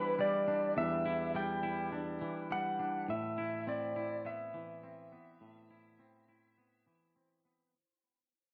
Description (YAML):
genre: rock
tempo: 103 BPM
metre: 4/4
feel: straight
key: unclear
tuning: A4 = 444 Hz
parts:
  - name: clean lap steel guitar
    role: melody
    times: 0.0-7.1 s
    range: B4 to G5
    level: -38 LUFS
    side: equal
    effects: analog delay
  - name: twangy electric guitar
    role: arpeggios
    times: 0.0-7.7 s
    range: E2 to E4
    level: -41 LUFS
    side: equal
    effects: subtle chorus, analog delay
room: wet small room ambience, RT60 0.5 s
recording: dark, warm production, lossy compression artefacts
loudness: -36 LUFS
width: mono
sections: 0.0-7.7 A section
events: fade-out 0.0-7.7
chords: 0.0 Em7; 3.1 Amadd9